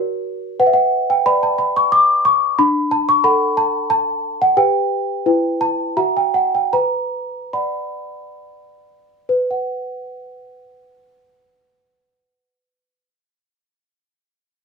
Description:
classical, lullaby for celesta; 64-91 BPM; 3/4; straight; B minor; A4 = 445 Hz
small celesta; solo; 0.0-14.6 s; D4 to D6; -15 LUFS; equal
light reverb; -15 LUFS; side -4 dB against mid
0.0-9.3 A section; 9.3-14.6 B section
slowing down 3.6-9.3
0.0 F#; 0.6 Bm; 2.6 D; 4.6 G; 5.3 Em; 6.0 F#7b9; 6.7 Bm; 9.3 B5
| 0.59 1.26 1.92 | 2.58 3.25 3.91 | 4.58 5.26 5.97 | 6.73 7.53 8.38 | 9.29 10.22 11.15 | 12.09 13.02 13.95

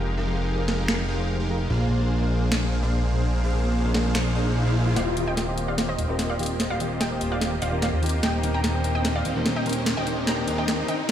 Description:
future bass; 147 BPM; 4/4; half-time; A4 = 443 Hz
rich chamber string section; sustained chords; 0.0-11.1 s; Eb3 to Bb4; -37 LUFS; left 1 dB
supersaw chords; riff; 0.0-10.9 s; Ab3 to F5; -30 LUFS; right 1 dB; cassette tape, low-pass filter, dub echo
fat analog bass; bass; 0.0-10.8 s; Eb1 to Eb2; -26 LUFS; equal
tine electric piano; accompaniment; 0.3-11.0 s; Bb2 to D5; -31 LUFS; left 2 dB; phaser, dub echo
trap drum kit; drums; 0.7-11.1 s; finger snaps, hi-hat, snare drum; -28 LUFS; equal
riser; sound effects; 3.3-11.1 s; -33 LUFS; left 1 dB
wide unison pluck; melody; 5.0-11.1 s; C5 to Bb5; -31 LUFS; right 1 dB; tape echo
light reverb, digital ambience; played on a big sound system in a bare room, stone room reverb, high-pass filter; -22 LUFS; side -10 dB against mid
0.0-5.0 A section; 5.0-11.1 B section
riser 3.3-5.0, 5.0-11.1; build-up 5.0-11.1; drum fill 5.0-11.1; filter sweep on supersaw synth 5.0-11.1
0.0 Fm11; 1.7 Bb9; 5.0 Eb69; 8.2 Cm7/Eb
| 0.07 0.47 0.88 1.29 | 1.70 2.11 2.52 2.92 | 3.33 3.74 4.15 4.56 | 4.96 5.37 5.78 6.19 | 6.60 7.01 7.41 7.82 | 8.23 8.64 9.05 9.46 | 9.86 10.27 10.68 11.09

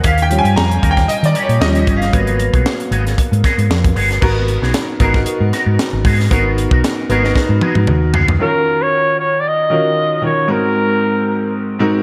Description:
polished 1980s jazz-funk pop; 115 BPM; 4/4; swing 54% on 16ths; A4 = 440 Hz
clear baby grand piano; accompaniment; 0.0-12.0 s; G#2 to A#5; -20 LUFS; equal; lush chorus
electric guitar with an envelope filter; riff; 0.0-8.3 s; A#3 to A#4; -25 LUFS; equal; analog chorus
hollow-body short-scale fingered electric bass; bass; 0.0-8.4 s; G1 to D#3; -18 LUFS; equal
tight funk drum kit; drums; 0.0-8.4 s; crash cymbal, hi-hat, kick drum, snare drum, toms; -20 LUFS; equal
warm flugelhorn; melody; 8.4-11.5 s; A#4 to D#5; -18 LUFS; equal; slapback echo
moderate lush hall reverb, RT60 1.5 s, small room ambience; big arena sound; -15 LUFS; mono
0.0-4.2 A section; 4.2-8.4 B section; 8.4-12.0 C section
grand piano solo 0.0-4.2; drum fill 7.4-8.4
0.0 D#7; 2.1 G#m7; 8.4 D#m9; 10.5 G#9
| 0.05 0.57 1.09 1.61 | 2.13 2.66 3.18 3.70 | 4.22 4.74 5.26 5.79 | 6.31 6.83 7.35 7.88 | 8.40 8.92 9.44 9.96 | 10.48 11.01 11.53

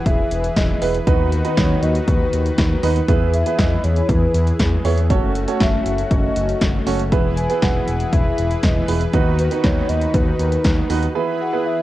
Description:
synth-pop; 119 BPM; 4/4; straight; E major; A4 = 443 Hz
hollow clarinet-like synth lead; melody; 0.0-11.8 s; B4 to G#5; -25 LUFS; left 2 dB; chorus
brassy analog pad; sustained chords; 0.0-11.8 s; D#3 to B4; -24 LUFS; left 1 dB; chorus, cassette tape
smooth gliding synth bass; bass; 0.1-11.1 s; E1 to E2; -20 LUFS; equal
punchy analog drum machine; drums; 0.1-11.1 s; hi-hat, kick drum, snare drum; -20 LUFS; equal; cassette tape
clear baby grand piano; accompaniment; 0.8-11.8 s; B3 to C#5; -23 LUFS; right 7 dB; cassette tape
light reverb; home recording on cassette; -16 LUFS; side -15 dB against mid
0.0-11.8 A section
break 11.2-11.8
0.0 E; 1.1 B/D#; 3.1 E; 5.1 F#m; 7.1 E; 9.1 B/D#; 11.2 E
0.06 0.56 | 1.07 1.57 2.08 2.58 | 3.08 3.59 4.09 4.60 | 5.10 5.61 6.11 6.61 | 7.12 7.62 8.13 8.63 | 9.13 9.64 10.14 10.65 | 11.15 11.66

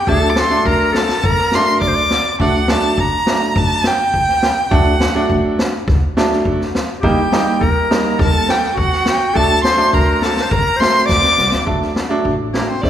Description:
klezmer; 103 BPM; 4/4; straight; D phrygian dominant; A4 = 442 Hz
rich violin; melody; 0.0-12.9 s; Bb4 to D6; -17 LUFS; equal
bright clarinet; second line; 0.0-2.4, 7.0-12.9 s; Bb3 to D5; -21 LUFS; left 2 dB
bright upright piano; accompaniment; 0.1-12.9 s; F#3 to Eb4; -19 LUFS; right 2 dB
upright bass; bass; 0.1-12.9 s; A1 to Eb2; -22 LUFS; equal
street-band drum kit; drums; 0.1-12.9 s; kick drum, snare drum; -19 LUFS; left 1 dB
moderate concert hall reverb, RT60 2.3 s; recorded in a church or concert hall; -13 LUFS; side -10 dB against mid
0.0-2.4 A section; 2.4-11.7 A section; 11.7-12.9 B section
drum fill 11.1-11.7; violin solo 11.7-12.9
0.1 D; 7.0 Eb; 9.3 D
| 0.07 0.65 1.23 1.81 | 2.39 2.97 3.55 4.13 | 4.71 5.29 5.87 6.45 | 7.03 7.61 8.19 8.77 | 9.35 9.93 10.51 11.09 | 11.67 12.25 12.83

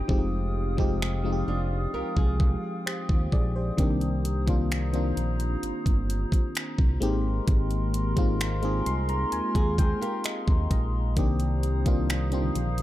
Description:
contemporary R&B; 65 BPM; 4/4; straight; C minor; A4 = 442 Hz
FM electric piano; accompaniment; 0.0-12.8 s; D3 to C6; -30 LUFS; left 1 dB; chorus, phaser
large flute ensemble; sustained chords; 0.0-12.8 s; F4 to Eb6; -36 LUFS; left 2 dB; sidechain pumping
flamenco guitar; arpeggios; 0.0-3.5, 9.6-11.1 s; D4 to C5; -37 LUFS; right 2 dB; digital delay
smooth gliding synth bass; bass; 0.0-12.8 s; F1 to Eb2; -28 LUFS; equal
smooth R&B drum kit; drums; 0.1-12.8 s; finger snaps, hi-hat, kick drum; -25 LUFS; equal
digital ambience; dark, warm production; -24 LUFS; side -14 dB against mid
0.0-12.8 A section
break 0.0-3.8; FM electric piano fill 8.4-11.2
0.1 Fm9; 3.8 Cm7; 7.0 Abmaj9; 11.2 Cm7
| 0.09 1.01 1.94 2.86 | 3.78 4.71 5.63 6.55 | 7.47 8.40 9.32 10.24 | 11.17 12.09

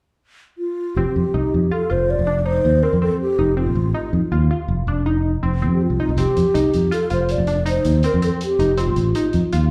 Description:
progressive instrumental, band music in an uneven meter; 161 BPM; 7/4; straight; F mixolydian; A4 = 440 Hz
mellow hollow wooden-headed alto flute; melody; 0.6-9.5 s; F4 to D5; -23 LUFS; equal; plate reverb, tape echo
tight sequenced synth; arpeggios; 1.0-9.7 s; C4 to F4; -28 LUFS; equal; chorus, plate reverb, slapback echo
fingered electric bass; bass; 1.0-9.7 s; F1 to F2; -21 LUFS; equal
hi-hat; drums; 6.2-9.6 s; -38 LUFS; equal
moderate club reverb, RT60 0.8 s; live gig heard through the venue's PA, club reverb; -19 LUFS; mono
1.0-9.7 A section
0.0 N.C.; 1.0 F7(no3)
0.22 0.59 | 0.96 1.34 1.71 2.08 2.46 2.83 3.20 | 3.58 3.95 4.32 4.69 5.06 5.43 5.81 | 6.18 6.55 6.92 7.29 7.67 8.04 8.41 | 8.78 9.15 9.52

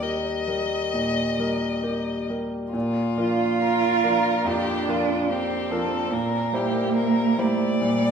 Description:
classical, slow romantic movement for piano trio; 65-73 BPM; 4/4; rubato; Bb major; A4 = 440 Hz
rich violin; melody; 0.0-8.1 s; F4 to Eb5; -28 LUFS; left 3 dB
bright concert grand piano; accompaniment; 0.0-8.1 s; Eb2 to C5; -24 LUFS; equal
rich cello; second line; 3.2-8.1 s; G3 to F4; -24 LUFS; right 7 dB
wet recital hall reverb, RT60 1.6 s; heard from further back in the room; -21 LUFS; side -6 dB against mid
0.0-2.7 A section; 2.7-8.1 B section
0.0 Eb; 2.7 Bb; 6.1 C7/Bb
0.02 0.94 1.84 | 2.74 3.61 4.46 5.30 | 6.13 6.97 7.82

